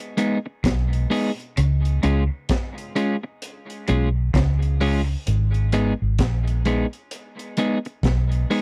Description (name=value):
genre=dub reggae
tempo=65 BPM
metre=4/4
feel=swing 60% on 16ths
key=G# dorian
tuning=A4 = 440 Hz
part: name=crunchy breakbeat drum kit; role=drums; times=0.0-8.6 s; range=hi-hat, kick drum, snare drum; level=-28 LUFS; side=equal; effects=none
part: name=electric guitar at the edge of break-up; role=accompaniment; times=0.2-8.6 s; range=G#3 to G#4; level=-26 LUFS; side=equal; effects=dub echo
part: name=clean electric guitar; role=riff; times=0.6-4.6 s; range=B2 to C#3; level=-33 LUFS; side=equal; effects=none
part: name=vintage muted fingered electric bass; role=bass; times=0.6-8.4 s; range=G#1 to C#2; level=-23 LUFS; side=equal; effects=none
room=little or no reverb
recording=dry, close 1970s-style studio recording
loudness=-22 LUFS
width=mono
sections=0.0-8.6 A section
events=none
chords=0.0 G#m; 1.6 C#; 5.3 G#m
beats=0.65 | 1.57 2.50 3.42 4.34 | 5.27 6.19 7.12 8.04